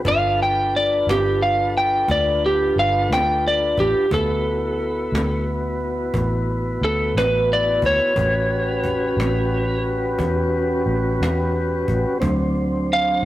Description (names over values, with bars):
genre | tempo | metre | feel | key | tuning
slow blues | 59 BPM (dotted quarters) | 12/8 | straight | unclear | A4 = 440 Hz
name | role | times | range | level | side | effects
mellow tonewheel organ | sustained chords | 0.0-13.2 s | F#3 to C5 | -23 LUFS | equal | slow rotary speaker
vintage muted fingered electric bass | bass | 0.0-13.2 s | G1 to E2 | -24 LUFS | equal | none
electric slide guitar | melody | 0.1-13.2 s | G4 to G5 | -19 LUFS | equal | none
cajon | drums | 0.1-13.0 s | none | -30 LUFS | equal | none
room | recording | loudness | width
moderate stone room reverb, RT60 1.3 s | rough rehearsal-room recording, tube saturation | -18 LUFS | side -15 dB against mid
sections
0.0-12.2 A section; 12.2-13.2 B section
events
electric slide guitar solo 12.2-13.2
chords
0.1 G9; 4.1 D69; 8.2 A13; 12.2 D7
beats
| 0.05 1.06 2.08 3.09 | 4.11 5.12 6.13 7.15 | 8.16 9.18 10.19 11.21 | 12.22 13.24